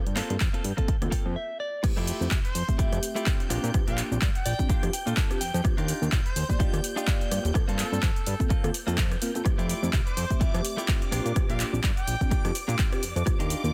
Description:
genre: filtered disco house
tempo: 126 BPM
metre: 4/4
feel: swing 57% on 16ths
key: unclear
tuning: A4 = 439 Hz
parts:
  - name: string machine, full ensemble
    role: sustained chords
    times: 0.0-13.7 s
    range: D6 to G6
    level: -43 LUFS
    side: equal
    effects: ensemble chorus, sidechain pumping, low-pass filter
  - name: fat analog bass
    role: bass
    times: 0.0-13.7 s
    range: Eb1 to Bb2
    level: -32 LUFS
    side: equal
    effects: sidechain pumping, low-pass filter
  - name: punchy analog drum machine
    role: drums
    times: 0.1-13.7 s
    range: crash cymbal, handclaps, hi-hat, rim click, shaker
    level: -36 LUFS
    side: equal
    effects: overdrive, sidechain pumping on hats, sidechain pumping on cymbals, sidechain pumping on perc
  - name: direct-recorded clean electric guitar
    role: riff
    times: 0.2-13.7 s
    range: A3 to G5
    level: -36 LUFS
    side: equal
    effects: sidechain pumping, low-pass filter
  - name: mellow tine electric piano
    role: accompaniment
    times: 0.3-13.7 s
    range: A3 to E5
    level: -37 LUFS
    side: equal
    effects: phaser, sidechain pumping, low-pass filter
  - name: electronic kick drum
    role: drums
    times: 0.4-13.4 s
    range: none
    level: -28 LUFS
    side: equal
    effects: none
  - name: brilliant trumpet section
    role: melody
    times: 2.4-12.4 s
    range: A4 to G5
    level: -40 LUFS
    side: equal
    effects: sidechain pumping, low-pass filter, tape echo
room: little or no reverb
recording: dense, heavily limited modern master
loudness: -27 LUFS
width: mono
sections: 0.0-1.8 A section; 1.8-13.7 B section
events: clean electric guitar fill 0.9-1.8, 4.2-5.6; stop 1.4-1.8; drop 1.8-13.7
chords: 0.0 Gm11; 1.8 Fmaj9; 3.5 Bb6; 5.6 Ebmaj9; 7.6 Gm11; 9.5 Fmaj9; 11.1 Bb6

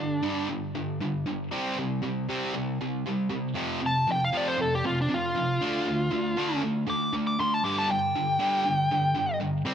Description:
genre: rock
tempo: 118 BPM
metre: 4/4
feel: straight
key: unclear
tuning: A4 = 439 Hz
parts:
  - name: smooth overdriven lead guitar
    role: melody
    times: 0.0-0.5, 3.9-9.4 s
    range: D4 to D6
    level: -26 LUFS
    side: equal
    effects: none
  - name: distorted electric guitar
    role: riff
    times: 0.0-9.7 s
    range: F2 to D4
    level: -28 LUFS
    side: equal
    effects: distortion
room: moderate plate reverb, RT60 3.0 s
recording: none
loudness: -25 LUFS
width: side -8 dB against mid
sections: 0.0-9.7 A section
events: lead electric guitar solo 0.0-9.7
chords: 0.0 G5; 1.5 C5; 3.6 F5; 5.6 Dm; 7.6 G5

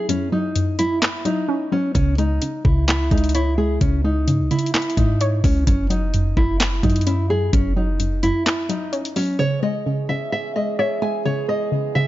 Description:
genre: hip hop, trap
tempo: 129 BPM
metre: 4/4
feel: half-time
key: C# minor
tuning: A4 = 443 Hz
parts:
  - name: nylon-string guitar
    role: melody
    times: 0.0-12.1 s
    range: C#4 to G#5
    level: -23 LUFS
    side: equal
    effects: ping-pong delay
  - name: warbly dusty pluck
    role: accompaniment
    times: 0.0-12.1 s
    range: F#2 to C#5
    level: -23 LUFS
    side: equal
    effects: chorus
  - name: trap drum kit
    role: drums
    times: 0.1-9.3 s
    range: handclaps, hi-hat, kick drum, snare drum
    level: -21 LUFS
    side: equal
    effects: none
  - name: clean 808-style bass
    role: bass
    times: 2.0-8.3 s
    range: F#1 to G#2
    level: -20 LUFS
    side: equal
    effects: none
  - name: mellow French horn section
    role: sustained chords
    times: 9.4-12.1 s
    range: E3 to G#4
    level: -28 LUFS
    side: right 11 dB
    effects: stereo widening
room: little or no reverb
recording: nothing above 7.5 kHz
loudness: -18 LUFS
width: side -15 dB against mid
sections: 0.0-9.4 A section; 9.4-12.1 B section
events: break 0.0-2.0, 8.5-9.4; silent gap 1.5-2.0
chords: 0.0 F#5; 2.0 C#5; 5.7 F#5; 9.4 C#m

